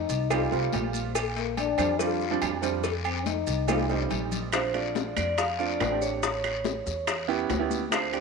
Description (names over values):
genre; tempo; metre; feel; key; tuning
Afro-Cuban jazz; 142 BPM; 4/4; straight; Bb major; A4 = 439 Hz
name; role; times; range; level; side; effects
breathy trombone; second line; 0.0-4.1 s; Bb3 to F4; -31 LUFS; left 11 dB; none
upright bass; bass; 0.0-8.2 s; A1 to F2; -33 LUFS; equal; none
agogo bells and timbales; percussion; 0.1-8.2 s; none; -35 LUFS; right 10 dB; none
congas; percussion; 0.1-8.2 s; none; -37 LUFS; left 12 dB; none
guiro; percussion; 0.1-8.2 s; none; -39 LUFS; left 12 dB; none
maracas; percussion; 0.1-8.2 s; none; -43 LUFS; right 13 dB; none
clear upright piano; accompaniment; 0.3-8.2 s; F3 to A4; -30 LUFS; right 12 dB; none
claves; percussion; 0.3-8.1 s; none; -42 LUFS; right 10 dB; none
cowbell and bongos; percussion; 0.3-8.2 s; none; -32 LUFS; left 11 dB; none
vibraphone with medium hard mallets; melody; 4.5-8.2 s; C5 to F5; -30 LUFS; right 1 dB; none
room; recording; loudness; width
moderate echo chamber reverb, RT60 2.1 s; 1960s-style stereo with parts hard left and right; -25 LUFS; side -4 dB against mid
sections
0.0-4.5 A section; 4.5-8.2 B section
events
trombone solo 0.0-4.5; drum fill 3.7-4.5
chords
0.0 F7; 1.1 Bb69; 2.8 F7; 4.5 Bbmaj7; 6.2 A7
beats
0.30 0.73 | 1.15 1.57 2.00 2.42 | 2.84 3.26 3.69 4.11 | 4.53 4.96 5.38 5.80 | 6.23 6.65 7.07 7.50 | 7.92